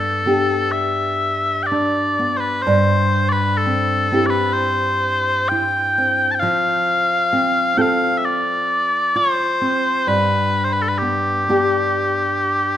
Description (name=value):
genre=celtic folk, Celtic slow air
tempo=57-67 BPM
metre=4/4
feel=rubato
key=G mixolydian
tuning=A4 = 440 Hz
part: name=mellow small bagpipes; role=melody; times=0.0-12.8 s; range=G4 to A5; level=-18 LUFS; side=left 1 dB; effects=none
part: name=nylon-string guitar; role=accompaniment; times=0.0-12.8 s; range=G2 to A4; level=-21 LUFS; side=equal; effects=none
room=light reverb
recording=minimal, uncompressed stereo recording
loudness=-16 LUFS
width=side -11 dB against mid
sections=0.0-12.8 A section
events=none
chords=0.0 Gadd9; 2.7 C/G; 6.4 F; 10.1 G